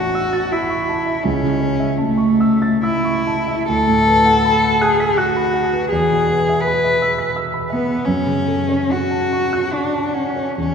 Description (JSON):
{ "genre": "classical, romantic duo for cello and grand piano", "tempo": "68-85 BPM", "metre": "3/4", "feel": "rubato", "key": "A major", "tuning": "A4 = 440 Hz", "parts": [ { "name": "dark cello", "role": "melody", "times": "0.0-10.7 s", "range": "A3 to B4", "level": "-16 LUFS", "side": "left 1 dB", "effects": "none" }, { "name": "warm grand piano", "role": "accompaniment", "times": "0.0-10.7 s", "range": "A1 to B6", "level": "-21 LUFS", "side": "right 2 dB", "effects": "none" } ], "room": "wet cathedral reverb, RT60 4.1 s", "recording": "recorded in a church or concert hall", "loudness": "-15 LUFS", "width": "side -6 dB against mid", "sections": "0.0-10.7 A section", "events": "none", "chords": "0.0 A; 1.3 A/C#; 3.7 Bm7/D; 5.9 E; 8.1 F#m" }